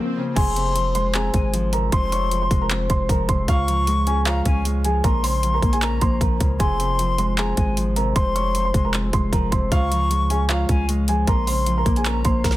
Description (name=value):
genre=hip hop, trap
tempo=154 BPM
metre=4/4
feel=half-time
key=F minor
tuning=A4 = 440 Hz
part: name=dark concert grand piano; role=melody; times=0.0-12.6 s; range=Bb3 to Db6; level=-26 LUFS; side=right 2 dB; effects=tape echo
part: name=Celtic harp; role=accompaniment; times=0.0-12.6 s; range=F2 to Db5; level=-26 LUFS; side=left 3 dB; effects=none
part: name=hollow concert flute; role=second line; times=0.4-12.4 s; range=Ab5 to Db6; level=-27 LUFS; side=left 4 dB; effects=tape echo
part: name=long sustained 808-style bass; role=bass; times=0.4-12.6 s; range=F1 to Db2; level=-23 LUFS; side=equal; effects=none
part: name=trap drum kit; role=drums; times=0.4-12.6 s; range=crash cymbal, handclaps, hi-hat, kick drum, snare drum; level=-22 LUFS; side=equal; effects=none
room=small room ambience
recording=dense, heavily limited modern master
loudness=-18 LUFS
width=side -15 dB against mid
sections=0.4-12.6 A section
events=break 0.0-0.4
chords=0.4 Fm; 3.5 Db; 5.0 Bbm; 6.6 Fm; 9.7 Db; 11.3 Bbm